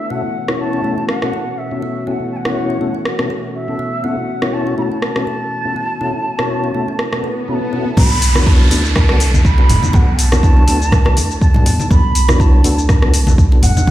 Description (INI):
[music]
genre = afro house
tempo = 122 BPM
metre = 4/4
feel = swing 55% on 16ths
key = B minor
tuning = A4 = 439 Hz
[part]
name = mellow bansuri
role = melody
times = 0.0-13.9 s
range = E5 to B5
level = -23 LUFS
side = right 2 dB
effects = dub echo
[part]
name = warm analog pad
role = sustained chords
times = 0.0-7.9 s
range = B2 to F#4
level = -26 LUFS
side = left 1 dB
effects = chorus, sidechain pumping
[part]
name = kalimba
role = arpeggios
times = 0.1-13.9 s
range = A3 to A4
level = -25 LUFS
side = left 1 dB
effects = sidechain pumping, dub echo
[part]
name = mellow tonewheel organ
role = stabs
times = 0.1-13.9 s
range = B2 to C#5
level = -23 LUFS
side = left 2 dB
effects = chorus vibrato, slow rotary speaker, sidechain pumping, dub echo
[part]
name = afro-pop drum kit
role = drums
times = 0.5-13.9 s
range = crash cymbal, hi-hat, rim click, shaker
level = -21 LUFS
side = equal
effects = overdrive
[part]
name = swell and downlifter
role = sound effects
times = 7.2-11.9 s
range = none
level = -23 LUFS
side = equal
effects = none
[part]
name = warm sub bass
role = bass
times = 8.0-13.9 s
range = F#1 to D2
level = -15 LUFS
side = equal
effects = sidechain pumping
[part]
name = electronic kick drum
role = drums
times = 8.0-13.9 s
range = none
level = -12 LUFS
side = equal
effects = overdrive
[part]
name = congas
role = percussion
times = 8.0-13.9 s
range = none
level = -18 LUFS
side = left 1 dB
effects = none
[sound]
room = light reverb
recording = played on a big sound system in a bare room, large studio reverb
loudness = -12 LUFS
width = side -14 dB against mid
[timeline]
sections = 0.0-8.0 A section; 8.0-13.9 B section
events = swell 7.2-8.0; drop 8.0-13.9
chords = 0.1 F#m7/B; 8.0 Bm7